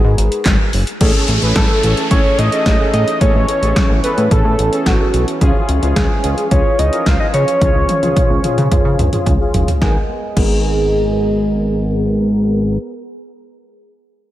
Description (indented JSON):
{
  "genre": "synth-pop",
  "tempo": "109 BPM",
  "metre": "4/4",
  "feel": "straight",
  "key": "unclear",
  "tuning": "A4 = 440 Hz",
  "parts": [
    { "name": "fat analog lead", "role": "melody", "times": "0.0-12.8 s", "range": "F#4 to E#5", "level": "-19 LUFS", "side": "right 1 dB", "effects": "low-pass filter, slapback echo, digital delay" },
    { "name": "warm French horn section", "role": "sustained chords", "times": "0.0-12.8 s", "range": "E3 to D#5", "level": "-25 LUFS", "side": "equal", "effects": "low-pass filter" },
    { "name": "chorused synth bass", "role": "bass", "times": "0.0-12.8 s", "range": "F#1 to C#3", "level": "-16 LUFS", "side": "equal", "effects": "none" },
    { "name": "punchy analog drum machine", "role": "drums", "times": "0.2-10.5 s", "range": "crash cymbal, handclaps, hi-hat, kick drum, snare drum, toms", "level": "-16 LUFS", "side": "equal", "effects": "none" },
    { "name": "analog synth brass", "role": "accompaniment", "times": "1.0-12.8 s", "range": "B3 to B4", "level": "-22 LUFS", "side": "left 1 dB", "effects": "chorus, low-pass filter, slapback echo" },
    { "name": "downlifter", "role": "sound effects", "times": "1.0-5.4 s", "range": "none", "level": "-25 LUFS", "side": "equal", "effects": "none" }
  ],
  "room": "moderate lush hall reverb, RT60 2.3 s",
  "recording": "big arena sound",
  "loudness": "-12 LUFS",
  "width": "side -14 dB against mid",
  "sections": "0.0-1.0 A section; 1.0-9.8 B section; 9.8-12.0 C section",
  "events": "filter sweep 1.0-9.8; drum fill 7.6-9.8",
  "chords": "0.0 G#m7; 1.0 Amaj7; 5.4 C#; 9.8 G#madd9"
}